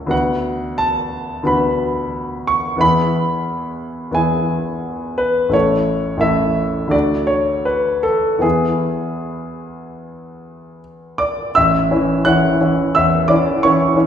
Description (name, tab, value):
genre	classical, romantic character piece for solo piano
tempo	76-90 BPM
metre	4/4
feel	rubato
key	A major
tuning	A4 = 440 Hz
part	clear grand piano	solo	0.0-14.1 s	A1 to F#6	-15 LUFS	equal	none
room	wet recital hall reverb, RT60 1.7 s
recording	heard from further back in the room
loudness	-15 LUFS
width	side -8 dB against mid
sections	0.0-11.6 A section; 11.6-14.1 A section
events	none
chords	0.1 Bm/D; 2.8 E; 5.5 A; 6.9 D; 8.4 E; 11.6 A